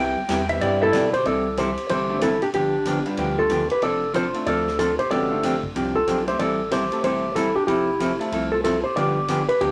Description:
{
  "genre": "country, western swing",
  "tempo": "187 BPM",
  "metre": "4/4",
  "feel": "swing 63% on 8ths",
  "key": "C major",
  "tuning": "A4 = 440 Hz",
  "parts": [
    { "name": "pedal steel guitar", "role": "second line", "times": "0.0-1.3 s", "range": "C5 to G5", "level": "-27 LUFS", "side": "equal", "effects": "none" },
    { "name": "vintage hollow-body jazz guitar", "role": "accompaniment", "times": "0.0-9.7 s", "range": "C3 to A4", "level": "-28 LUFS", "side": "equal", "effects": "none" },
    { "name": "saturated sub bass", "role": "bass", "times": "0.0-9.7 s", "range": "E1 to B2", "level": "-37 LUFS", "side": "equal", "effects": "none" },
    { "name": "swinging big-band drum kit", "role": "drums", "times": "0.3-9.7 s", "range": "hi-hat, kick drum, ride cymbal, snare drum", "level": "-38 LUFS", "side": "equal", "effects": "none" },
    { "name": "tack piano", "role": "accompaniment", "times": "0.5-9.2 s", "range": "G3 to C5", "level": "-32 LUFS", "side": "equal", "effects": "none" },
    { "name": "hollow-body jazz guitar", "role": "melody", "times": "0.8-9.7 s", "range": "G4 to D5", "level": "-25 LUFS", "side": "equal", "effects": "none" },
    { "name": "growling clarinet", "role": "second line", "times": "0.8-9.7 s", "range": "D4 to A4", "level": "-29 LUFS", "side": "equal", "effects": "none" }
  ],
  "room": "moderate studio ambience, RT60 0.5 s",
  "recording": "none",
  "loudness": "-22 LUFS",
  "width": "mono",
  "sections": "0.0-1.3 A section; 1.3-9.7 B section",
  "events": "pedal steel guitar solo 0.0-1.3",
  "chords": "0.0 Cmaj7; 1.3 C69; 2.5 G7; 3.8 Dm7/F; 5.1 G9sus4; 6.4 Am7; 7.7 Fmaj7; 9.0 G7"
}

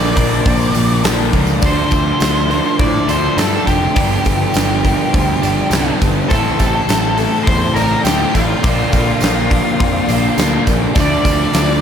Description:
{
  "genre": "rock, shoegaze and dream pop",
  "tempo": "103 BPM",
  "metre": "4/4",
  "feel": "straight",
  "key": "D minor",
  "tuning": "A4 = 440 Hz",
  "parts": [
    { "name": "octave-fuzz lead guitar", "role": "melody", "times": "0.0-11.8 s", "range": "F4 to D5", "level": "-20 LUFS", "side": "left 1 dB", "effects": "distortion, tape echo" },
    { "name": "string machine, violins", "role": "sustained chords", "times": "0.0-11.8 s", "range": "Bb3 to D6", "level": "-28 LUFS", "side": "right 1 dB", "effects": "none" },
    { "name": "direct-recorded clean electric guitar", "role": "arpeggios", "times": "0.0-11.8 s", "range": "G4 to D5", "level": "-28 LUFS", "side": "left 12 dB", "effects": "ensemble chorus, tape echo" },
    { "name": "overdriven semi-hollow guitar", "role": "riff", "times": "0.0-11.8 s", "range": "G2 to E4", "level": "-21 LUFS", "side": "right 10 dB", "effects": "reverse reverb" },
    { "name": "raw garage guitar", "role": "riff", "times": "0.0-11.8 s", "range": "G2 to E4", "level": "-23 LUFS", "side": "equal", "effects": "overdrive" },
    { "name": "thick fuzz guitar", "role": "riff", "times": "0.0-11.8 s", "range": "G2 to D4", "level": "-21 LUFS", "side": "left 11 dB", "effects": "distortion, lush chorus" },
    { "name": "fuzz picked electric bass", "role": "bass", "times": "0.0-11.8 s", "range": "F1 to A2", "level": "-19 LUFS", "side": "equal", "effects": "overdrive" },
    { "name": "huge arena drum kit", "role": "drums", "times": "0.2-11.7 s", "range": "hi-hat, kick drum, snare drum", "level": "-18 LUFS", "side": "equal", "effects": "none" },
    { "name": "tambourine", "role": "percussion", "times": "0.2-11.7 s", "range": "none", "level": "-32 LUFS", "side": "right 12 dB", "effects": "none" }
  ],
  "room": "light reverb",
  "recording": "none",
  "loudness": "-12 LUFS",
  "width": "side -8 dB against mid",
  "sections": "0.0-1.6 A section; 1.6-11.8 B section",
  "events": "none",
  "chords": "0.0 Bb6; 1.6 Dm9; 4.0 G7sus4; 6.3 Am7; 8.6 Bb6; 11.0 Dm9"
}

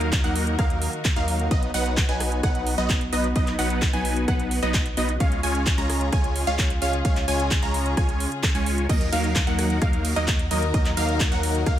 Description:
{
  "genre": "EDM, festival progressive house",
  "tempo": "130 BPM",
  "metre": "4/4",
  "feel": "straight",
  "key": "Eb minor",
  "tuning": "A4 = 440 Hz",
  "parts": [
    { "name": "dark studio string section", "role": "sustained chords", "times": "0.0-11.8 s", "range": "Db3 to Bb4", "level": "-32 LUFS", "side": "left 2 dB", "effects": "sidechain pumping" },
    { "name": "wide unison pluck", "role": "arpeggios", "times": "0.0-11.8 s", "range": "D#5 to Bb5", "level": "-31 LUFS", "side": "right 1 dB", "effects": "sidechain pumping, digital delay" },
    { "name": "supersaw stab", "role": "riff", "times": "0.0-11.8 s", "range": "Gb3 to Bb5", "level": "-26 LUFS", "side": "equal", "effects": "phaser, sidechain pumping, digital delay" },
    { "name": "saturated sub bass", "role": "bass", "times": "0.0-11.8 s", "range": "B1 to Eb2", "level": "-27 LUFS", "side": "equal", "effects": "sidechain pumping" },
    { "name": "house drum kit", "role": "drums", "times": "0.0-11.8 s", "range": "crash cymbal, handclaps, hi-hat, ride cymbal, rim click", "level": "-29 LUFS", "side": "right 1 dB", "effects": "none" },
    { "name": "electronic kick drum", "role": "drums", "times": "0.1-11.8 s", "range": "none", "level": "-23 LUFS", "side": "equal", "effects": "none" }
  ],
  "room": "light reverb",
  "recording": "none",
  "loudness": "-20 LUFS",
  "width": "side -11 dB against mid",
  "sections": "0.0-11.8 A section",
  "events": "none",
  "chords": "0.0 Ebm; 1.5 B; 5.2 Db; 8.9 Ebm"
}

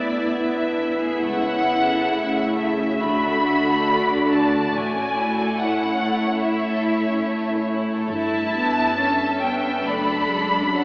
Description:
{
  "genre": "classical, slow romantic movement for string orchestra",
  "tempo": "70 BPM",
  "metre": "4/4",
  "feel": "rubato",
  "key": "A major",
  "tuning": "A4 = 440 Hz",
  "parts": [
    { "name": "rich studio violin section", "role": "melody", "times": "0.0-10.8 s", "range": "D5 to B5", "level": "-23 LUFS", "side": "equal", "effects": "none" },
    { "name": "bright studio violin section", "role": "second line", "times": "0.0-10.8 s", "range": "A3 to F#5", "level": "-27 LUFS", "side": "equal", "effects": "none" },
    { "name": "rich studio viola section", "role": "accompaniment", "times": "0.0-10.8 s", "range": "F#3 to F#4", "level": "-23 LUFS", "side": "equal", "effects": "none" },
    { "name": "rich studio cello section", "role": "bass", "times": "0.0-10.8 s", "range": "F#2 to D3", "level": "-27 LUFS", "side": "equal", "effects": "none" },
    { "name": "rich studio double bass section", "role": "bass", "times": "1.2-10.7 s", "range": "F#1 to D2", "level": "-40 LUFS", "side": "equal", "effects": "none" }
  ],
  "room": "wet scoring stage reverb, RT60 1.8 s",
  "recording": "heard from further back in the room, AM radio sound",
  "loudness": "-18 LUFS",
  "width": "side -25 dB against mid",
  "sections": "0.0-10.8 A section",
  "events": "none",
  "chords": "0.0 E7(no3)/A; 1.2 A/C#; 3.0 D; 4.7 A; 8.1 A7/G; 9.9 D/F#"
}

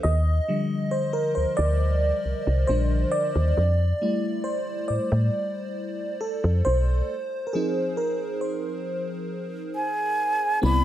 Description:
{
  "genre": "contemporary R&B",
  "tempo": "68 BPM",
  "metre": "4/4",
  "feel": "straight",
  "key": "unclear",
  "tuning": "A4 = 444 Hz",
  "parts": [
    { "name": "FM electric piano with soft pad layer", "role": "accompaniment", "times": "0.0-10.8 s", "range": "D3 to Eb5", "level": "-26 LUFS", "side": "equal", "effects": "chorus" },
    { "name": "woody FM bass", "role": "bass", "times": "0.0-10.8 s", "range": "Bb1 to A2", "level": "-21 LUFS", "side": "equal", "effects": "none" },
    { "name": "breathy hollow jazz flute", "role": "melody", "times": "9.8-10.8 s", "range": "Ab5 to B5", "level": "-23 LUFS", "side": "right 2 dB", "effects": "none" }
  ],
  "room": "light reverb, small room ambience",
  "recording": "none",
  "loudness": "-22 LUFS",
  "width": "side -12 dB against mid",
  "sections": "0.0-10.6 A section",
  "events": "FM electric piano solo 0.0-10.6; break 7.1-10.6",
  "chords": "0.0 Ebmaj9; 3.6 Fmaj9; 7.1 Fm7"
}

